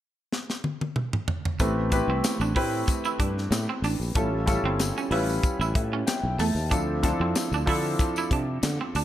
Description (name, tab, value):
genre	polished 1980s jazz-funk pop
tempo	94 BPM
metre	4/4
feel	swing 54% on 16ths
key	A minor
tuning	A4 = 440 Hz
part	tight funk drum kit	drums	0.3-9.0 s	hi-hat, kick drum, snare drum, toms	-27 LUFS	equal	gated reverb
part	warm grand piano	accompaniment	1.6-9.0 s	F3 to A5	-28 LUFS	equal	lush chorus
part	electric guitar at the edge of break-up	riff	1.6-9.0 s	A3 to E4	-32 LUFS	right 5 dB	lush chorus
part	sustaining fretless electric bass	bass	1.6-9.0 s	G1 to D3	-28 LUFS	equal	none
part	tambourine	percussion	1.6-9.0 s	none	-39 LUFS	left 6 dB	none
room	light reverb, studio reverb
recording	none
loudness	-23 LUFS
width	side -12 dB against mid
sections	0.0-1.6 A section; 1.6-9.0 B section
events	drum fill 0.3-1.6; grand piano fill 5.4-6.7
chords	0.0 N.C.; 1.6 Am9; 4.2 A7b13; 6.7 Dm7